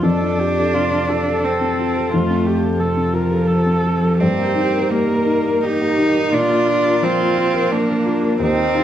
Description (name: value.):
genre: neoclassical piano and strings.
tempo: 87 BPM.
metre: 3/4.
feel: rubato.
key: Bb major.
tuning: A4 = 441 Hz.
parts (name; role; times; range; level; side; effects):
warm cello; second line; 0.0-8.8 s; F3 to Eb4; -18 LUFS; right 2 dB; none.
dark viola; accompaniment; 0.0-8.8 s; D4 to Bb4; -22 LUFS; equal; none.
felt-muted upright piano; accompaniment; 0.0-8.8 s; Eb2 to Bb4; -20 LUFS; left 2 dB; none.
chorused pulse-width pad; sustained chords; 0.0-8.8 s; Bb3 to A5; -26 LUFS; left 2 dB; none.
room: moderate recital hall reverb, RT60 1.4 s.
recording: recorded in a church or concert hall.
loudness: -15 LUFS.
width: side -10 dB against mid.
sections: 0.0-8.8 A section.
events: none.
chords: 0.0 F; 4.2 Eb/G; 6.3 Bb.